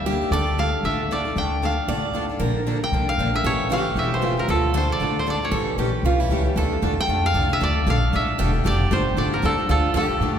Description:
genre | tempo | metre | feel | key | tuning
acoustic string swing (jazz manouche) | 230 BPM | 4/4 | swing 58% on 8ths | D minor | A4 = 439 Hz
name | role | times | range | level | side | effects
koto | melody | 0.0-10.4 s | A4 to G5 | -24 LUFS | equal | none
picked steel-string acoustic guitar | second line | 0.0-10.4 s | E4 to D5 | -28 LUFS | right 4 dB | none
upright bass | bass | 0.0-10.4 s | E1 to A2 | -24 LUFS | equal | none
picked steel-string acoustic guitar | accompaniment | 0.1-10.4 s | C#3 to A4 | -28 LUFS | left 4 dB | none
picked steel-string acoustic guitar | accompaniment | 0.1-10.4 s | D3 to A4 | -30 LUFS | right 3 dB | none
room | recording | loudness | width
wet church reverb, RT60 2.8 s | recorded in a church or concert hall | -19 LUFS | side -8 dB against mid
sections
0.0-6.6 A section; 6.6-10.4 A section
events
none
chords
0.3 Dm; 2.4 Bbmaj7; 3.4 A7#9; 4.5 Dm; 5.5 A7#9; 6.6 Dm

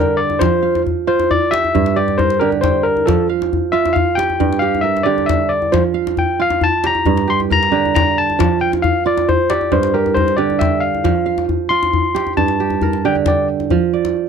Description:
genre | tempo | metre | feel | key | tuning
west african traditional, West African string and xylophone music | 90 BPM (dotted quarters) | 12/8 | straight | F major | A4 = 440 Hz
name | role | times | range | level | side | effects
overdriven tine electric piano | melody | 0.0-13.5 s | A4 to C6 | -17 LUFS | left 4 dB | none
kora | arpeggios | 0.0-14.3 s | G2 to G5 | -17 LUFS | right 11 dB | none
djembe | percussion | 0.3-14.3 s | none | -20 LUFS | left 6 dB | none
room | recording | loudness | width
light reverb | dry, close 1970s-style studio recording | -13 LUFS | side -7 dB against mid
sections
0.0-13.7 A section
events
tine electric piano solo 0.0-13.7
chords
0.4 F5; 1.7 Gm; 3.1 Fsus2; 4.4 Gm; 5.7 Fsus2; 7.1 Gm; 8.4 Fsus2; 9.7 Gm; 11.0 F5; 12.4 Gm; 13.7 F5

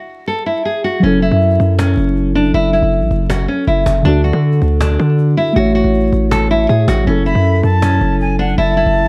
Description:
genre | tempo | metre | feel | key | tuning
hip hop, trap | 159 BPM | 4/4 | half-time | F# minor | A4 = 441 Hz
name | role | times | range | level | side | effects
nylon-string guitar | melody | 0.0-9.1 s | C#4 to A4 | -19 LUFS | equal | low-pass filter
muted felt-like synth keys | accompaniment | 1.0-9.1 s | D3 to C#5 | -20 LUFS | equal | chorus, low-pass filter
distorted 808-style bass | bass | 1.0-9.1 s | F#1 to D3 | -17 LUFS | equal | distortion
cajon | drums | 1.0-9.1 s | none | -29 LUFS | equal | none
jazz flute | second line | 7.3-9.1 s | F#5 to B5 | -22 LUFS | equal | delay
room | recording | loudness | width
studio reverb | dark, warm production, vinyl crackle | -14 LUFS | mono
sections
0.0-1.0 A section; 1.0-9.1 B section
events
stop 0.0-1.0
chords
0.0 N.C.; 1.0 F#m7; 4.0 D; 5.6 A6; 7.1 F#m7

